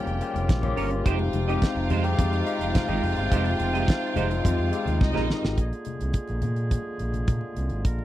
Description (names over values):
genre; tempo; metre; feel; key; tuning
disco; 106 BPM; 4/4; straight; F minor; A4 = 438 Hz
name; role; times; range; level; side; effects
clear studio string section; second line; 0.0-5.6 s; Eb4 to G5; -33 LUFS; right 1 dB; none
overdriven tine electric piano; accompaniment; 0.0-5.6 s; Ab3 to Bb4; -29 LUFS; left 5 dB; phaser
warm woodwind section; sustained chords; 0.0-8.0 s; C3 to G5; -33 LUFS; right 1 dB; none
semi-hollow electric guitar; accompaniment; 0.1-5.5 s; Ab3 to Eb5; -30 LUFS; right 7 dB; ensemble chorus
overdriven fingered electric bass; bass; 0.1-8.0 s; F1 to Bb2; -27 LUFS; equal; none
damped 70s drum kit; drums; 0.1-8.0 s; hi-hat, kick drum, snare drum; -22 LUFS; equal; none
congas; percussion; 0.4-8.0 s; none; -36 LUFS; left 5 dB; none
room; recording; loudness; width
little or no reverb; dry, close 1970s-style studio recording; -23 LUFS; side -14 dB against mid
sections
0.0-5.6 A section; 5.6-8.0 B section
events
drum fill 5.0-5.6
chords
0.0 Gm7b5; 1.1 Fm9; 5.6 Bb7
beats
0.49 | 1.06 1.62 2.19 2.75 | 3.32 3.88 4.45 5.01 | 5.58 6.15 6.71 7.28 | 7.85